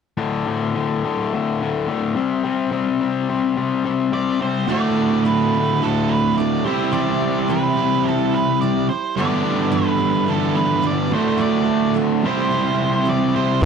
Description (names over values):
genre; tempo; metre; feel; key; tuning
rock; 107 BPM; 4/4; straight; D mixolydian; A4 = 441 Hz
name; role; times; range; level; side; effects
cranked stack guitar; riff; 0.2-13.7 s; D2 to C5; -20 LUFS; left 9 dB; overdrive
octave-fuzz lead guitar; melody; 4.1-13.7 s; A4 to D5; -24 LUFS; right 4 dB; distortion
picked steel-string acoustic guitar; accompaniment; 4.7-13.7 s; G2 to G4; -27 LUFS; right 14 dB; none
distorted electric guitar; riff; 4.7-13.7 s; D2 to C5; -21 LUFS; right 14 dB; distortion
room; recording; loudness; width
light reverb; dry, close 1970s-style studio recording; -17 LUFS; side -6 dB against mid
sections
0.2-4.7 A section; 4.7-13.7 B section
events
none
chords
0.2 D5; 2.2 C5; 4.7 D; 6.7 C; 9.2 G6; 11.1 D; 12.2 C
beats
| 0.19 0.75 1.32 1.88 | 2.44 3.01 3.57 4.13 | 4.69 5.25 5.82 6.38 | 6.94 7.50 8.06 8.62 | 9.18 9.73 10.29 10.85 | 11.41 11.97 12.52 13.08 | 13.64